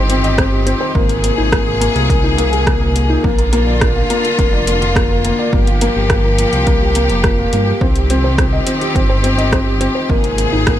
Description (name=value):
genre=piano and strings electronica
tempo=105 BPM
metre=4/4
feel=straight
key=C minor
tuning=A4 = 444 Hz
part: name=rich studio string section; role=sustained chords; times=0.0-10.8 s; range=C3 to Ab4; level=-20 LUFS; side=left 2 dB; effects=sidechain pumping
part: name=dark upright piano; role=riff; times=0.0-10.8 s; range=Bb3 to Eb5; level=-17 LUFS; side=left 1 dB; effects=ping-pong delay
part: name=dark detuned saw bass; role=bass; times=0.0-10.8 s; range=F1 to G2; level=-17 LUFS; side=equal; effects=sidechain pumping
part: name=deep house drum kit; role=drums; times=0.1-10.8 s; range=hi-hat, rim click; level=-22 LUFS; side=equal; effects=overdrive
part: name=electronic kick drum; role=drums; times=0.4-10.8 s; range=none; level=-17 LUFS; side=equal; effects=overdrive
room=small room ambience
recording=none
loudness=-12 LUFS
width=side -12 dB against mid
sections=0.0-10.8 A section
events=none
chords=0.0 Cm; 1.0 Abadd9; 3.2 Bb; 5.5 Gm7; 7.8 Cm; 10.1 Abadd9